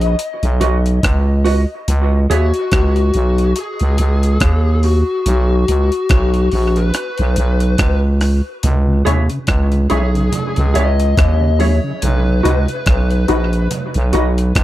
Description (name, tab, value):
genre	dub reggae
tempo	71 BPM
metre	4/4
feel	swing 57% on 16ths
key	C# dorian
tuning	A4 = 442 Hz
part	smooth overdriven lead guitar	melody	0.0-13.7 s	F#4 to D#5	-22 LUFS	left 4 dB	dub echo
part	growling FM bass	bass	0.0-14.6 s	A#1 to D#2	-14 LUFS	equal	none
part	breakbeat sampler-style drum kit	drums	0.0-14.6 s	hi-hat, kick drum, rim click	-18 LUFS	equal	none
part	mellow electric guitar	accompaniment	0.6-2.5, 9.1-14.3 s	F#4 to E5	-24 LUFS	right 5 dB	lush chorus, high-pass filter, dub echo
part	congas	percussion	8.6-14.6 s	none	-26 LUFS	right 5 dB	high-pass filter on perc, dub echo
part	mellow tonewheel organ	accompaniment	8.9-11.9 s	C#3 to E4	-27 LUFS	left 2 dB	none
part	filtered dub chord stab	stabs	9.1-14.4 s	D#4 to C#5	-24 LUFS	left 7 dB	phaser, high-pass filter, dub echo
room	little or no reverb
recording	dry, close 1970s-style studio recording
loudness	-13 LUFS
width	side -15 dB against mid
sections	0.0-14.6 A section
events	break 0.0-8.6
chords	0.0 B; 1.9 C#5; 5.3 B5; 8.6 C#m; 12.0 B